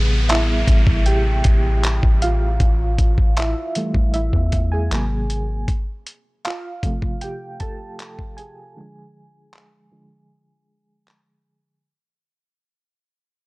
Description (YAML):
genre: contemporary R&B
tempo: 78 BPM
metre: 4/4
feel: straight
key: unclear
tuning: A4 = 441 Hz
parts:
  - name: FM electric piano with tremolo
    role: accompaniment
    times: 0.0-11.9 s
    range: C3 to A5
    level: -26 LUFS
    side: right 1 dB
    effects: low-pass filter
  - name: soft 808-style bass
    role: bass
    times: 0.0-5.7 s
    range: G#1 to E2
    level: -19 LUFS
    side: equal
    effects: none
  - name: downlifter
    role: sound effects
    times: 0.0-5.7 s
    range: none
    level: -31 LUFS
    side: equal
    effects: none
  - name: dusty soul sampler-style drum kit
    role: drums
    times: 0.3-11.2 s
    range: handclaps, hi-hat, kick drum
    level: -20 LUFS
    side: equal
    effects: none
room: little or no reverb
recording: dry, gritty hardware recording, cassette tape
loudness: -17 LUFS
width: side -23 dB against mid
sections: 0.0-11.8 A section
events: fade-out 0.0-11.8; FM electric piano solo 0.0-11.8; filter sweep on FM electric piano 0.0-11.8; break 8.8-11.8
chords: 0.0 Am9; 2.6 Fmaj9/A; 4.9 G#9; 5.7 G9sus4; 8.8 Ddim